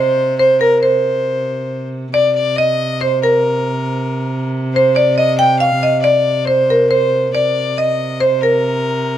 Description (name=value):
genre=medieval dance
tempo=138 BPM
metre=3/4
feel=straight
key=C minor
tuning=A4 = 441 Hz
part: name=marimba with medium hard mallets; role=melody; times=0.0-9.2 s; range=Bb4 to G5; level=-14 LUFS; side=right 1 dB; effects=none
part: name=clear fiddle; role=second line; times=0.0-9.2 s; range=Bb4 to G5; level=-21 LUFS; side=left 6 dB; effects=none
part: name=rich viola da gamba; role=drone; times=0.0-9.2 s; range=C3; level=-22 LUFS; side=right 2 dB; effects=stereo widening
room=light reverb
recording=dry, close 1970s-style studio recording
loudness=-13 LUFS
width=side -11 dB against mid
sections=0.0-2.1 A section; 2.1-9.2 B section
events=none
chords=none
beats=0.39 | 0.83 1.26 1.70 | 2.13 2.56 3.00 | 3.43 3.87 4.30 | 4.74 5.17 5.60 | 6.04 6.47 6.91 | 7.34 7.78 8.21 | 8.64 9.08